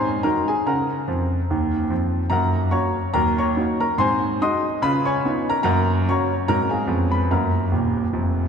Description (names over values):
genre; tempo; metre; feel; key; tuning
jazz, stride piano; 145 BPM; 4/4; swing 59% on 8ths; F# major; A4 = 440 Hz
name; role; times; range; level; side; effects
clear concert grand piano; solo; 0.0-8.5 s; D#1 to D#6; -19 LUFS; equal; none
room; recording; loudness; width
wet church reverb, RT60 3.5 s; recorded in a church or concert hall; -19 LUFS; side -6 dB against mid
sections
0.0-8.5 A section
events
grand piano fill 1.1-2.3, 7.7-8.5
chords
0.0 G#7; 0.7 F#/C#; 1.5 D#madd9; 2.3 F#; 3.2 D#m7; 4.0 G#7; 4.8 C#9; 5.6 F#; 6.5 G#7; 6.9 C#7/E#; 7.3 F#